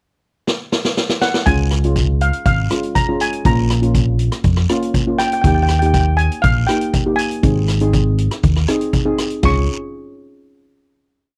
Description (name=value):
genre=calypso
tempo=120 BPM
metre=4/4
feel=straight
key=Db major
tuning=A4 = 440 Hz
part: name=street-band drum kit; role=drums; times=0.5-9.6 s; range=crash cymbal, hi-hat, kick drum, rim click, snare drum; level=-21 LUFS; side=equal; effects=none
part: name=steel pan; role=melody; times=1.2-9.7 s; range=F5 to Db6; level=-22 LUFS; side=equal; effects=none
part: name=steel pan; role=accompaniment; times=1.5-9.7 s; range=Ab3 to Ab4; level=-23 LUFS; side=equal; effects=none
part: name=fingered electric bass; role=bass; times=1.5-9.7 s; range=Ab1 to F2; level=-18 LUFS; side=equal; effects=none
part: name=guiro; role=percussion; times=1.5-9.7 s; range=none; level=-33 LUFS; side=equal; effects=none
room=light reverb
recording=dry, close 1970s-style studio recording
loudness=-17 LUFS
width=mono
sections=0.0-1.5 pickup bar; 1.5-9.4 verse; 9.4-11.4 final chord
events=drum fill 0.5-1.5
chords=0.0 N.C.; 1.5 Db; 3.5 Bbm; 5.4 Eb; 7.4 Ab; 9.4 Db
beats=0.47 0.97 | 1.46 1.96 2.46 2.95 | 3.45 3.95 4.45 4.95 | 5.44 5.94 6.44 6.94 | 7.44 7.94 8.44 8.94 | 9.44